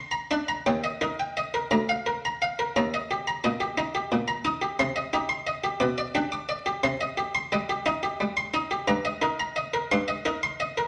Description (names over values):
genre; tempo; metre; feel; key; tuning
classical, baroque-style suite movement for harpsichord; 58 BPM (dotted quarters); 6/8; rubato; Eb major; A4 = 444 Hz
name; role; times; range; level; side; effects
buff-stop harpsichord; solo; 0.0-10.9 s; D2 to D6; -27 LUFS; equal; none
room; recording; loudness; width
wet stone room reverb, RT60 1.1 s; vinyl crackle, nothing above 10.9 kHz; -27 LUFS; mono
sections
0.7-10.9 A section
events
none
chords
0.0 Bb; 0.7 Eb; 1.7 Bb/D; 2.8 Eb; 4.8 Cm; 5.8 G/B; 6.8 Cm; 8.9 Eb/G; 9.9 Cm7/G